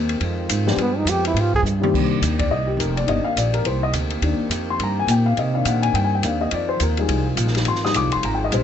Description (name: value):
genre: jazz, big band swing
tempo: 209 BPM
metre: 4/4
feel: swing 60% on 8ths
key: C minor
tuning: A4 = 438 Hz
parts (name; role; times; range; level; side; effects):
- clear trombone section; sustained chords; 0.0-8.6 s; Eb3 to G4; -29 LUFS; right 1 dB; none
- upright bass; bass; 0.0-8.6 s; F1 to C3; -22 LUFS; right 1 dB; none
- open jazz drum kit; drums; 0.1-8.6 s; crash cymbal, hi-hat, kick drum, ride cymbal, snare drum, toms; -26 LUFS; equal; none
- dark upright piano; accompaniment; 0.7-8.6 s; Eb3 to Eb6; -23 LUFS; left 5 dB; none
- warm trombone; melody; 0.8-1.6 s; B3 to Ab4; -21 LUFS; right 2 dB; none
room: little or no reverb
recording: nothing above 8.0 kHz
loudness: -18 LUFS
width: side -9 dB against mid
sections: 0.0-1.9 A section; 1.9-8.6 A section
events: trombone solo 0.0-1.9; drum fill 1.6; upright piano solo 1.9-8.6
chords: 0.2 Fm7; 0.8 G7b9; 1.9 Cm7; 6.5 Fm7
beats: 0.21 0.49 | 0.78 1.07 1.35 1.64 | 1.93 2.22 2.50 2.79 | 3.08 3.36 3.65 3.94 | 4.22 4.51 4.80 5.08 | 5.37 5.66 5.94 6.23 | 6.52 6.80 7.09 7.38 | 7.66 7.95 8.23 8.52